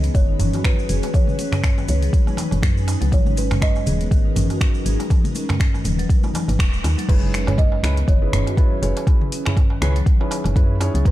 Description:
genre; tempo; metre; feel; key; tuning
afro house; 121 BPM; 4/4; swing 56% on 16ths; unclear; A4 = 440 Hz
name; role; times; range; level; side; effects
kalimba; melody; 0.0-11.1 s; G#4 to D#5; -30 LUFS; right 2 dB; digital delay
ethereal airy pad; sustained chords; 0.0-7.1 s; F#3 to B4; -32 LUFS; equal; ensemble chorus, built-in reverb, phaser, sidechain pumping
marimba with medium mallets; arpeggios; 0.0-11.1 s; D#3 to G#4; -28 LUFS; left 2 dB; sidechain pumping, digital delay
woody FM bass; bass; 0.0-11.1 s; D#1 to F#2; -21 LUFS; equal; sidechain pumping
afro-pop drum kit; drums; 0.0-11.1 s; crash cymbal, finger snaps, hi-hat, toms; -28 LUFS; left 2 dB; studio ambience
tube shaker; percussion; 0.0-7.1 s; none; -38 LUFS; right 4 dB; none
electronic kick drum; drums; 0.1-11.1 s; none; -17 LUFS; equal; studio ambience
congas; percussion; 0.1-7.1 s; none; -30 LUFS; left 3 dB; none
darbuka; percussion; 0.4-10.9 s; none; -27 LUFS; right 2 dB; none
felt-muted upright piano; stabs; 7.1-11.1 s; B3 to A#5; -28 LUFS; right 2 dB; sidechain pumping, digital delay
room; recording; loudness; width
small room reverb; dark, warm production; -16 LUFS; side -15 dB against mid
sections
0.0-7.1 A section; 7.1-11.1 B section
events
band accent 6.6; drop 7.1-11.1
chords
0.0 F#sus4; 3.1 G#m; 7.1 F#7sus4

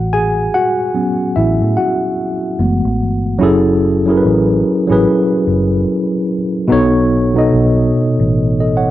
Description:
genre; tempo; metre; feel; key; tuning
R&B, neo-soul; 73 BPM; 4/4; swing 60% on 16ths; F# dorian; A4 = 439 Hz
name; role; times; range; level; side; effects
mellow tine electric piano; accompaniment; 0.0-8.9 s; B2 to G#5; -13 LUFS; equal; medium stereo tremolo, cassette tape
vintage muted fingered electric bass; bass; 0.0-8.9 s; F#1 to A2; -17 LUFS; equal; none
room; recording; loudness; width
light reverb, digital ambience; home recording on cassette; -12 LUFS; side -14 dB against mid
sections
0.0-3.4 A section; 3.4-8.9 B section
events
tine electric piano solo 0.0-3.4; tine electric piano fill 8.8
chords
0.0 A6; 2.6 F#m11; 3.4 F#m7; 6.7 B7

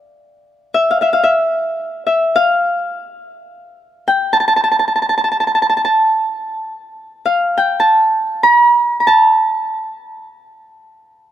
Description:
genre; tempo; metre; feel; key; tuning
Arabic maqam ensemble; free time; none; none; A maqam bayati; A4 = 441 Hz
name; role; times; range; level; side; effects
Celtic harp; solo; 0.7-10.5 s; E5 to Bb5+50c; -12 LUFS; equal; none
room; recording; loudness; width
light reverb; none; -12 LUFS; side -11 dB against mid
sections
0.0-11.3 A section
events
none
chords
none

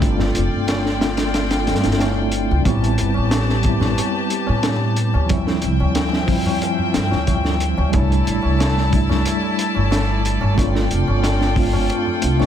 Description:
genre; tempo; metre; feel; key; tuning
trip hop; 91 BPM; 4/4; straight; A minor; A4 = 440 Hz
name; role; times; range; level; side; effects
mellow tine electric piano; accompaniment; 0.0-12.5 s; F3 to F4; -22 LUFS; equal; medium stereo tremolo, tape echo
rich chamber string section; sustained chords; 0.0-12.5 s; F3 to A5; -24 LUFS; left 3 dB; vintage 12-bit sampler grit
upright bass; bass; 0.0-12.5 s; F1 to A2; -20 LUFS; equal; none
crunchy breakbeat drum kit; drums; 0.0-12.5 s; hi-hat, kick drum, snare drum; -22 LUFS; equal; vintage 12-bit sampler grit
tabla; percussion; 0.2-12.5 s; none; -30 LUFS; equal; none
room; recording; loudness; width
small room ambience; none; -16 LUFS; side -9 dB against mid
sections
0.0-2.7 A section; 2.7-12.5 B section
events
none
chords
0.0 G7sus4; 2.7 Am9; 5.3 Dm11; 7.9 C69; 10.6 G7sus4

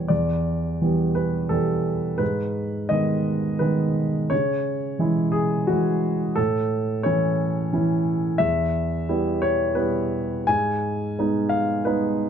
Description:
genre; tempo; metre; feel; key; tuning
neoclassical minimalist piano; 87 BPM; 3/4; rubato; unclear; A4 = 440 Hz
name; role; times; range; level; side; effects
warm grand piano; solo; 0.0-12.3 s; E2 to G#5; -21 LUFS; equal; none
room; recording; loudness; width
light reverb; dark, warm production, nothing above 7.6 kHz; -21 LUFS; side -8 dB against mid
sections
0.1-12.3 A section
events
none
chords
0.0 Em; 2.2 G#m; 4.3 C#m; 6.4 A; 8.4 Em; 10.5 G#m

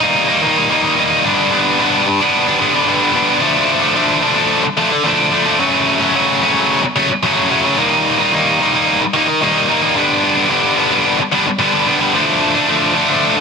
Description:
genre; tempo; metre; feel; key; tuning
rock; 110 BPM; 4/4; straight; unclear; A4 = 440 Hz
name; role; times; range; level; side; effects
heavy high-gain guitar; solo; 0.0-13.4 s; F#2 to Eb4; -12 LUFS; equal; distortion, digital delay
room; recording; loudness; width
moderate large studio reverb, RT60 1.1 s; dense, heavily limited modern master; -12 LUFS; side -5 dB against mid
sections
0.0-3.4 A section; 3.4-13.4 B section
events
none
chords
0.0 Eb; 1.3 G; 3.4 Dm; 5.6 F#m; 7.8 Eb; 10.0 G; 12.1 Dm

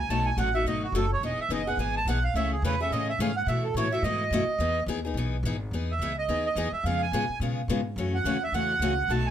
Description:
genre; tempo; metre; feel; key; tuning
acoustic string swing (jazz manouche); 213 BPM; 4/4; swing 59% on 8ths; E major; A4 = 440 Hz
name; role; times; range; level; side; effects
accordion; melody; 0.0-9.3 s; F#4 to A5; -28 LUFS; right 4 dB; none
upright bass; bass; 0.0-9.3 s; E1 to B2; -30 LUFS; equal; none
picked steel-string acoustic guitar; accompaniment; 0.1-9.3 s; B2 to G#4; -30 LUFS; left 4 dB; none
room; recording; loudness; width
moderate club reverb, RT60 0.6 s; none; -25 LUFS; side -10 dB against mid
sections
0.0-5.7 A section; 5.7-9.3 B section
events
accordion solo 0.0-5.7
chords
0.1 B7; 1.2 Emaj7; 2.3 Amaj7; 3.5 B7sus4; 4.6 Emaj7; 6.8 C#7; 8.0 F#m7

